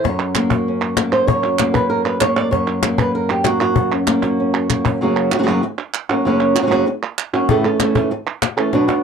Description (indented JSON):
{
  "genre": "flamenco",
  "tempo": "193 BPM",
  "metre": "4/4",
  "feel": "straight",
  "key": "unclear",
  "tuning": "A4 = 439 Hz",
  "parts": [
    { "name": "flamenco guitar", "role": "melody", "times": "0.0-9.0 s", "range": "F#2 to D5", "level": "-16 LUFS", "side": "right 1 dB", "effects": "none" },
    { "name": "cajon", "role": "percussion", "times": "0.0-4.9, 7.5-9.0 s", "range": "none", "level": "-20 LUFS", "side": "left 8 dB", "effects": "none" },
    { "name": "palmas hand claps", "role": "percussion", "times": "0.2-9.0 s", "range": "none", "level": "-23 LUFS", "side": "right 10 dB", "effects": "none" }
  ],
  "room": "light reverb",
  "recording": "dry, close 1970s-style studio recording",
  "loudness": "-15 LUFS",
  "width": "side -6 dB against mid",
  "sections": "0.0-5.0 A section; 5.0-9.0 B section",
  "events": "nylon-string guitar solo 0.0-5.0; drum fill 4.2-5.0, 8.7",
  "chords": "0.0 F#; 7.5 A"
}